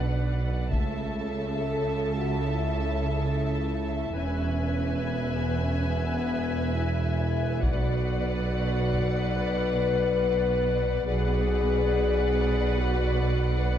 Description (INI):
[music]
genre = cinematic, epic orchestral film score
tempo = 70 BPM (dotted quarters)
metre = 12/8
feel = straight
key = B dorian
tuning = A4 = 440 Hz
[part]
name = rich symphonic violin section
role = melody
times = 0.0-13.8 s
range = F#5 to A5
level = -38 LUFS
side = left 3 dB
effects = none
[part]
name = warm symphonic violin section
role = second line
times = 0.0-13.8 s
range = D5 to E5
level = -36 LUFS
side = left 2 dB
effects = none
[part]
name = rich symphonic viola section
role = accompaniment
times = 0.0-13.8 s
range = A4 to B4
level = -36 LUFS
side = right 2 dB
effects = none
[part]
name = warm French horn section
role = sustained chords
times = 0.0-13.7 s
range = A3 to B4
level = -30 LUFS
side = left 5 dB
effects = none
[part]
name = clear symphonic cello section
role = bass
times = 0.0-13.8 s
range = E2 to C#3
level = -33 LUFS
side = right 2 dB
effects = none
[part]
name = rich studio double bass section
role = bass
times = 0.0-13.8 s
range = E1 to C#2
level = -29 LUFS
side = right 2 dB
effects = none
[part]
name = warm tuba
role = bass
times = 0.0-13.8 s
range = E1 to C#2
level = -34 LUFS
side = right 3 dB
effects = none
[part]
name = taiko ensemble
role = drums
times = 0.7-1.8, 7.6-9.2 s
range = none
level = -30 LUFS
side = equal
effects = none
[sound]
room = moderate scoring stage reverb, RT60 1.7 s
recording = dark, warm production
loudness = -24 LUFS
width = side -10 dB against mid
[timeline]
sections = 0.0-13.8 A section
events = none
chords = 0.0 Bm; 0.7 A/C#; 4.2 E; 7.6 Bm